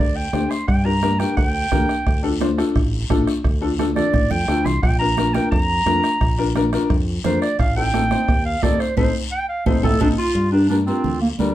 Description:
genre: latin, cumbia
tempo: 174 BPM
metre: 4/4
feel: straight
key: G minor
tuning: A4 = 440 Hz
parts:
  - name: mellow clarinet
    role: melody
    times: 0.0-11.5 s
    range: G3 to C6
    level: -22 LUFS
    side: right 1 dB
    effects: none
  - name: fingered electric bass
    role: bass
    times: 0.0-11.5 s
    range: A1 to G2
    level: -23 LUFS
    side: equal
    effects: none
  - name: bright upright piano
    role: accompaniment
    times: 0.3-11.5 s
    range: C4 to C5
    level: -23 LUFS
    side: left 4 dB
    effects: none
  - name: bombo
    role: percussion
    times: 0.3-10.1 s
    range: none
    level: -22 LUFS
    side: right 1 dB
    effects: none
  - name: congas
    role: percussion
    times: 0.3-11.5 s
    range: none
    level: -26 LUFS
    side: right 2 dB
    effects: none
  - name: guiro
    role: percussion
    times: 0.3-11.5 s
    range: none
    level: -36 LUFS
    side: left 5 dB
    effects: none
  - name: warm clarinet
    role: second line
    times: 10.0-11.5 s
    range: G3 to A4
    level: -24 LUFS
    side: right 2 dB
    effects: none
room: wet small room reverb, RT60 0.5 s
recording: heard from further back in the room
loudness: -17 LUFS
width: side -13 dB against mid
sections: 0.0-10.4 A section; 10.4-11.5 B section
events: clarinet solo 0.0-10.4; drum fill 4.1-4.8, 9.5-10.4; band accent 9.0-10.4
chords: 0.0 Gm; 2.1 Dm; 4.8 Bb; 7.6 Adim; 10.4 Gm7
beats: 0.34 | 0.68 1.03 1.37 1.72 | 2.06 2.41 2.76 3.10 | 3.45 3.79 4.14 4.48 | 4.83 5.17 5.52 5.86 | 6.21 6.55 6.90 7.25 | 7.59 7.94 8.28 8.63 | 8.97 9.32 9.66 10.01 | 10.35 10.70 11.04 11.39

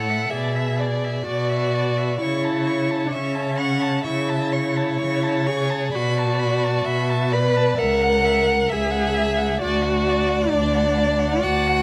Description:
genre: classical, slow romantic movement for string quartet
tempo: 65 BPM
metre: 4/4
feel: rubato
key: A major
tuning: A4 = 440 Hz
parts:
  - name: warm violin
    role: melody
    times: 0.0-11.8 s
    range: C#5 to C#6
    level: -32 LUFS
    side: equal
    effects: none
  - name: rich violin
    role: second line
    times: 0.0-11.8 s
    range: C#5 to F#5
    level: -27 LUFS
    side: equal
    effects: none
  - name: warm viola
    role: accompaniment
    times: 0.0-11.8 s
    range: C#4 to B4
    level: -26 LUFS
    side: equal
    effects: none
  - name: warm cello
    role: bass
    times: 0.0-11.8 s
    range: C#2 to C#3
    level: -26 LUFS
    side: equal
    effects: none
room: moderate recital hall reverb, RT60 1.6 s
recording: close, detailed microphones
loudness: -21 LUFS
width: mono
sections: 0.0-11.8 A section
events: none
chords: 0.3 E7/B; 2.2 A/C#; 5.9 Bm7; 7.8 F#7/C#; 9.6 Bm/D (rootless)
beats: 0.32 1.27 | 2.22 3.15 4.08 5.01 | 5.94 6.87 7.80 8.72 | 9.63 10.53 11.43

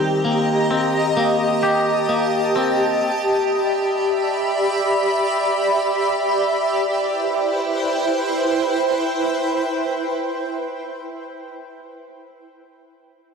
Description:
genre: dream pop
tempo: free time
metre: none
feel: none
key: C major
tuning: A4 = 440 Hz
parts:
  - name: granular cloud pad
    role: sustained chords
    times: 0.0-11.2 s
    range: E4 to B5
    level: -19 LUFS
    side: right 1 dB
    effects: built-in reverb
  - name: clean electric guitar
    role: arpeggios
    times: 0.0-3.6 s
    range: Eb3 to G4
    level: -22 LUFS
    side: left 2 dB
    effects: lush chorus, analog delay
room: light reverb, digital ambience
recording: dry, gritty hardware recording, cassette tape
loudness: -18 LUFS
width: side -5 dB against mid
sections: 0.0-6.7 A section; 6.7-10.4 B section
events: none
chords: 0.0 Eb6; 3.0 Em7; 6.7 Cmaj7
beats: free time

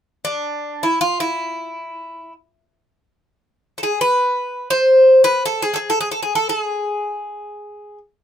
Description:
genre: greek folk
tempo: free time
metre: none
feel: none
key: E phrygian dominant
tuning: A4 = 440 Hz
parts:
  - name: Greek bouzouki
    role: melody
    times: 0.2-8.0 s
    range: D4 to C5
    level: -16 LUFS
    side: equal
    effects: none
room: moderate booth ambience, RT60 0.3 s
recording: minimal, uncompressed stereo recording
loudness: -16 LUFS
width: side -9 dB against mid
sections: 0.0-8.2 A section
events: none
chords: none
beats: free time

